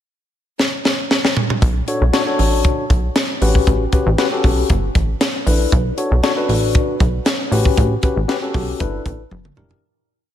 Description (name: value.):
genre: early-eighties boogie funk.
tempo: 117 BPM.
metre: 4/4.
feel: straight.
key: B minor.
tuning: A4 = 440 Hz.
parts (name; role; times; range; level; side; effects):
tight funk drum kit; drums; 0.6-9.8 s; hi-hat, kick drum, snare drum, toms; -18 LUFS; equal; none.
plucky analog bass; bass; 1.6-9.8 s; E#1 to B1; -18 LUFS; equal; none.
tine electric piano; accompaniment; 1.9-9.8 s; C#4 to C#5; -20 LUFS; left 4 dB; auto-pan, slapback echo.
room: light reverb, studio reverb.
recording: none.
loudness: -15 LUFS.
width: side -11 dB against mid.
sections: 0.0-1.6 pickup bar; 1.6-9.8 verse.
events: drum fill 0.6-1.6, 9.3-9.8; fade-out 7.8-9.8.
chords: 0.0 N.C.; 1.6 Bm9; 3.4 A13; 4.7 G69; 5.7 Bm9; 7.5 A13; 8.8 G69; 9.3 F#7b9b13.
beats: 0.08 0.59 1.11 | 1.62 2.13 2.65 3.16 | 3.67 4.18 4.70 5.21 | 5.72 6.24 6.75 7.26 | 7.77 8.29 8.80 9.31.